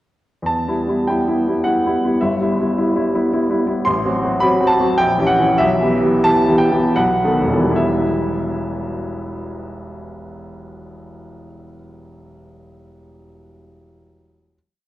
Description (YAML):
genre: classical, romantic character piece for solo piano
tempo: 71-111 BPM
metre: 3/4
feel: rubato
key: E minor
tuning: A4 = 440 Hz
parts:
  - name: clear grand piano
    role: solo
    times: 0.4-14.6 s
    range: E1 to C6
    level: -16 LUFS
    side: equal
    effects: none
room: wet concert hall reverb, RT60 2.2 s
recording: worn, warbling old tape, cassette tape, warbly pitch drift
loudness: -15 LUFS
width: side -15 dB against mid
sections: 0.5-7.8 A section; 7.8-12.3 final chord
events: slowing down 3.0-7.8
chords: 0.5 Em; 2.2 Em/G; 3.9 F#dim/A; 5.0 A#dim7; 5.6 Em/B; 7.0 B7; 7.8 Em